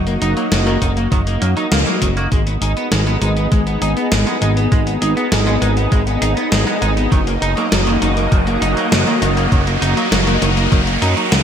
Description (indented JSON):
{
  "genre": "synthwave",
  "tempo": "100 BPM",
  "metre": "4/4",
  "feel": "straight",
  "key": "G# minor",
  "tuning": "A4 = 440 Hz",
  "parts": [
    { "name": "lush unison pad", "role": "sustained chords", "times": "0.0-11.4 s", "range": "A#3 to D#5", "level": "-21 LUFS", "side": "equal", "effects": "chorus, sidechain pumping" },
    { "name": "fat analog bass", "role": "bass", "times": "0.0-11.4 s", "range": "F#1 to F#2", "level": "-18 LUFS", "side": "equal", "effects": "none" },
    { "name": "electric guitar at the edge of break-up", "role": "arpeggios", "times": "0.1-11.4 s", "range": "F#3 to F#4", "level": "-22 LUFS", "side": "left 1 dB", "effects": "analog chorus, ping-pong delay" },
    { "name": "gated 80s digital drum machine", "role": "drums", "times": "0.1-11.4 s", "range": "hi-hat, snare drum", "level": "-20 LUFS", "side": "left 1 dB", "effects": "gated reverb, gated reverb snare" },
    { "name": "semi-hollow electric guitar", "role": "riff", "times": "0.2-11.3 s", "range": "D#3 to G#4", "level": "-26 LUFS", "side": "right 3 dB", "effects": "lush chorus, low-pass filter, ping-pong delay" },
    { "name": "electronic kick drum", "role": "drums", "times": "0.8-10.8 s", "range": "none", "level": "-16 LUFS", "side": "equal", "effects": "none" },
    { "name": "riser", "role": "sound effects", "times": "4.4-11.4 s", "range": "none", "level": "-24 LUFS", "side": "equal", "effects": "none" }
  ],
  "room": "moderate lush hall reverb, RT60 1.7 s, digital ambience",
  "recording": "bright 1980s-style digital production",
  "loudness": "-13 LUFS",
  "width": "side -8 dB against mid",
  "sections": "0.0-2.3 A section; 2.3-11.4 B section",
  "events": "band accent 1.7; filter sweep on clean electric guitar 2.3-11.4; riser 4.4-11.4",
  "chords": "0.0 D#m/F#; 2.3 G#m; 7.1 D#m/F#"
}